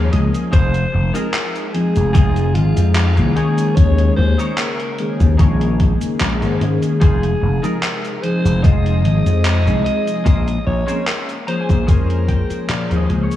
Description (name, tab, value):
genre	vaporwave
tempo	74 BPM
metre	4/4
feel	swing 53% on 16ths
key	F minor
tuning	A4 = 440 Hz
part	mellow synth brass	accompaniment	0.0-13.4 s	Eb3 to C5	-21 LUFS	left 1 dB	wide subtle chorus, tape echo
part	warbly tape-like pad	sustained chords	0.4-13.4 s	C3 to Eb4	-29 LUFS	left 1 dB	none
part	semi-hollow electric guitar	riff	0.0-13.4 s	Db4 to Bb5	-31 LUFS	left 1 dB	ensemble chorus, tape echo
part	slap bass with an envelope filter	bass	0.0-13.3 s	F1 to Bb2	-16 LUFS	left 1 dB	tube saturation
part	gated 80s digital drum machine	drums	0.1-13.4 s	cabasa, handclaps, hi-hat	-25 LUFS	equal	gated reverb
part	growling alto saxophone	melody	0.5-13.1 s	F4 to Eb5	-25 LUFS	equal	tape echo
part	electronic kick drum	drums	0.5-12.5 s	none	-13 LUFS	left 1 dB	overdrive
room	light reverb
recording	cassette tape, small room ambience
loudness	-14 LUFS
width	side -13 dB against mid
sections	0.0-13.4 A section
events	clean electric guitar fill 0.0-0.5, 11.1-13.4; fade-out 11.3-13.4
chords	0.0 Bbm7; 0.5 Fm7; 3.4 Eb7sus4; 7.0 Fm7; 10.3 Bbm9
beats	| 0.53 1.34 2.15 2.96 | 3.77 4.58 5.40 6.21 | 7.02 7.83 8.64 9.45 | 10.26 11.07 11.88 12.69